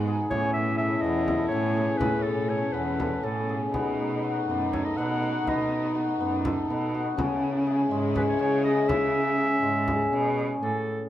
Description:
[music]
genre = contemporary instrumental, chamber music in an uneven meter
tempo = 244 BPM (eighths)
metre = 7/8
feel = straight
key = unclear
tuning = A4 = 440 Hz
[part]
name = mellow French horn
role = second line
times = 0.0-10.4 s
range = C#4 to E4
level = -30 LUFS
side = left 1 dB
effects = none
[part]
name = warm studio string section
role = sustained chords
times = 0.0-10.6 s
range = B2 to F#4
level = -36 LUFS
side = left 1 dB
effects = none
[part]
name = cimbalom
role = arpeggios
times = 0.0-11.1 s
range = G#3 to A4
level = -28 LUFS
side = left 2 dB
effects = none
[part]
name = warm cello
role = bass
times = 0.0-10.9 s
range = E2 to C#3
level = -31 LUFS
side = right 3 dB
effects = none
[part]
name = frame drum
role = percussion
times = 0.1-10.5 s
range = none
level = -33 LUFS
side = left 1 dB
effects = none
[part]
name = clear clarinet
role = melody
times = 0.3-11.1 s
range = A4 to F#5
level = -30 LUFS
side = equal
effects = none
[sound]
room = moderate studio reverb, RT60 0.5 s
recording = none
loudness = -23 LUFS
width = side -12 dB against mid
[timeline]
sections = 0.0-10.6 A section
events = none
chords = 0.3 Aadd9; 3.7 B7; 7.2 C#m

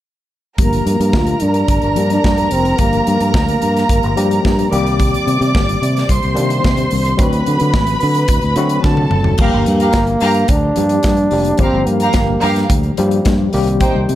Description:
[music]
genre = disco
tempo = 109 BPM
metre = 4/4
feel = straight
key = unclear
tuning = A4 = 440 Hz
[part]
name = breathy trombone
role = melody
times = 0.6-4.4, 9.4-12.7 s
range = Bb3 to F4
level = -18 LUFS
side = right 1 dB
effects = low-pass filter
[part]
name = warm studio violin section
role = second line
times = 0.6-13.9 s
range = Eb4 to D6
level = -19 LUFS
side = right 1 dB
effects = none
[part]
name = tine electric piano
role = accompaniment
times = 0.6-14.2 s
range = D3 to G4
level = -20 LUFS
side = left 4 dB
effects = overdrive, fast stereo tremolo, low-pass filter
[part]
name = overdriven fingered electric bass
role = bass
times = 0.6-14.2 s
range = F1 to D3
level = -17 LUFS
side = equal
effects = none
[part]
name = modern studio drum kit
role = drums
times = 0.6-14.2 s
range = crash cymbal, hi-hat, kick drum, snare drum, toms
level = -18 LUFS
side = equal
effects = none
[sound]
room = light reverb, studio reverb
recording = none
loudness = -12 LUFS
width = side -13 dB against mid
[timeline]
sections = 0.6-9.4 A section; 9.4-14.2 B section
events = filter sweep 0.6-9.4; drum fill 8.8-9.4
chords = 0.6 Gm7; 4.7 Cm7; 7.2 D7; 9.4 Gm7; 13.5 Cm7

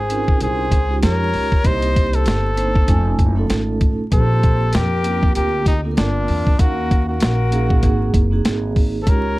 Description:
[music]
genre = hip hop, jazz-hop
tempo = 97 BPM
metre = 4/4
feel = swing 57% on 16ths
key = unclear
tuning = A4 = 441 Hz
[part]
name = clear trumpet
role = melody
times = 0.0-9.4 s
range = D4 to C5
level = -22 LUFS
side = equal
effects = plate reverb
[part]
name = breathy mellow concert flute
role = second line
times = 0.0-9.4 s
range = F4 to Eb5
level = -29 LUFS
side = left 8 dB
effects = plate reverb
[part]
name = upright bass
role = bass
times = 0.0-9.4 s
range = F1 to F2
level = -20 LUFS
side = equal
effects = none
[part]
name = vibraphone with soft mallets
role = accompaniment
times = 0.1-9.4 s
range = Ab3 to G#5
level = -24 LUFS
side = right 3 dB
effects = plate reverb
[part]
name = boom bap sampler-style drum kit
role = drums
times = 0.1-9.2 s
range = hi-hat, kick drum, snare drum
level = -16 LUFS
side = equal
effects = none
[sound]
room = light reverb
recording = dark, warm production, vinyl crackle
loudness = -15 LUFS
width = side -19 dB against mid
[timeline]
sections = 0.0-9.4 A section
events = none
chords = 0.0 Dbmaj7; 1.6 Cm7; 2.9 F7alt; 4.1 Bb69; 6.6 Ebm9; 7.8 Ab7

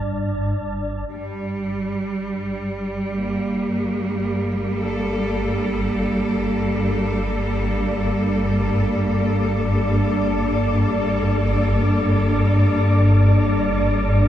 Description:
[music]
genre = dark ambient drone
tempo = free time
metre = none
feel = none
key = G minor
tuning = A4 = 440 Hz
[part]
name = swarming drone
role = drone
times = 0.0-14.3 s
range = G1 to G2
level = -21 LUFS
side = equal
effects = built-in reverb
[part]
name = bright studio cello section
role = sustained chords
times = 1.1-14.3 s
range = G3 to A4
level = -22 LUFS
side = equal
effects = none
[part]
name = wind-like tuned noise texture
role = texture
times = 2.4-14.3 s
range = D4 to D5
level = -27 LUFS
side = left 1 dB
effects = built-in reverb
[sound]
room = wet cathedral reverb, RT60 5.7 s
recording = dark, warm production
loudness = -18 LUFS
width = side -11 dB against mid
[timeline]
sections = 0.0-1.1 A section; 1.1-14.3 B section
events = fade-in on synth drone 1.1-14.3; fade-in on synth texture 1.1-14.3; fade-out on cello section 1.1-14.3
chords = 0.0 N.C.; 1.1 Gmadd9

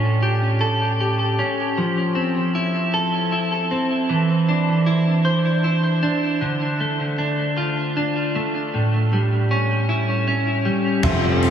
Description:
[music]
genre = post-rock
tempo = 52 BPM (dotted quarters)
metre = 6/8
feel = straight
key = unclear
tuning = A4 = 440 Hz
[part]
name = clean electric guitar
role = arpeggios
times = 0.0-11.5 s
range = A2 to C5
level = -18 LUFS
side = right 1 dB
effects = wide subtle chorus, diffuse ambient delay
[part]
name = icy glass pad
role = sustained chords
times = 11.2-11.5 s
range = F3 to A4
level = -24 LUFS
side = right 2 dB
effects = chorus, built-in reverb
[part]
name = felt-muted upright piano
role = arpeggios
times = 11.0-11.5 s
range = E5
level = -26 LUFS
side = right 6 dB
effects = diffuse ambient delay
[part]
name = fuzz fingered electric bass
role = bass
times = 11.0-11.5 s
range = F1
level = -20 LUFS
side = left 1 dB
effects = overdrive
[part]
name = huge arena drum kit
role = drums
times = 11.0-11.5 s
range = crash cymbal, hi-hat, kick drum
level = -21 LUFS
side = left 1 dB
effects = none
[sound]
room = wet huge ambient reverb, RT60 8.9 s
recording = dreamy mix soaked in reverb, small room reverb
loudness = -18 LUFS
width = side -8 dB against mid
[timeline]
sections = 0.0-11.0 A section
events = none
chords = 0.0 A7; 1.8 Fmaj7; 4.1 Cadd9/E; 6.4 Dm; 8.7 A7

